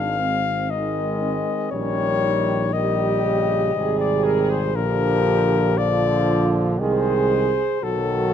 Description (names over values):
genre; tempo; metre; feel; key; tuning
classical, hymn-like piece for brass band; 59 BPM; 3/4; rubato; unclear; A4 = 440 Hz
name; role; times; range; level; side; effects
mellow flugelhorn; melody; 0.0-8.3 s; A4 to F5; -23 LUFS; left 8 dB; none
mellow French horn section; second line; 0.0-8.3 s; C4 to Ab4; -24 LUFS; right 7 dB; none
clear euphonium; accompaniment; 0.0-8.3 s; F3 to Ab3; -28 LUFS; left 2 dB; none
warm trombone; accompaniment; 0.0-8.3 s; C3 to Eb3; -29 LUFS; right 4 dB; none
mellow tuba; bass; 0.0-8.3 s; Ab1 to C2; -25 LUFS; equal; none
room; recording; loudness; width
light reverb; close, detailed microphones; -18 LUFS; side -9 dB against mid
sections
0.0-8.3 A section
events
none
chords
0.0 Ab5; 1.7 Eb7/Bb; 3.7 Abmaj7; 4.7 Bb; 6.8 Ab/C; 7.8 B7